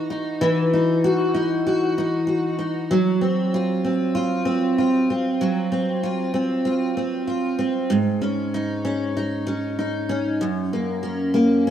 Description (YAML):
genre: indie pop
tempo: 96 BPM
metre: 4/4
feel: swing 55% on 16ths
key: unclear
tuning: A4 = 440 Hz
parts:
  - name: picked steel-string acoustic guitar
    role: solo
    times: 0.0-11.7 s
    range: Gb2 to F#4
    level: -20 LUFS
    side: equal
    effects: lush chorus, warbly pitch drift
room: moderate lush hall reverb, RT60 2.7 s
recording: rough home demo mix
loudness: -20 LUFS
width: side -10 dB against mid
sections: 0.0-11.7 A section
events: none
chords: 0.0 Esus2; 2.9 F5; 7.9 Absus4; 10.4 Gb